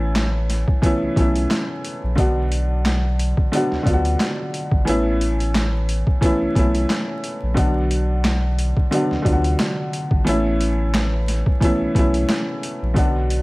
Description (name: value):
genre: hip hop, boom-bap hip-hop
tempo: 89 BPM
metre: 4/4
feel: swing 56% on 16ths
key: unclear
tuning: A4 = 443 Hz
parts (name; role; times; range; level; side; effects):
- dark upright piano; accompaniment; 0.0-13.4 s; D3 to F#4; -21 LUFS; equal; high-pass filter, low-pass filter
- warm sub bass; bass; 0.0-13.4 s; G#1 to D2; -21 LUFS; equal; none
- boom bap sampler-style drum kit; drums; 0.2-13.4 s; handclaps, hi-hat, kick drum, snare drum; -21 LUFS; equal; overdrive
- finger snap; percussion; 8.2-12.5 s; none; -38 LUFS; right 2 dB; none
room: small room ambience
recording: vinyl crackle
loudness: -17 LUFS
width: side -22 dB against mid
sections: 0.0-13.4 A section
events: none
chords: 0.0 Aadd9; 2.2 Bm; 4.9 Aadd9; 7.6 Bm; 10.3 Aadd9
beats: 0.15 0.83 1.50 | 2.18 2.85 3.52 4.20 | 4.87 5.55 6.22 6.89 | 7.57 8.24 8.92 9.59 | 10.27 10.94 11.61 12.29 | 12.96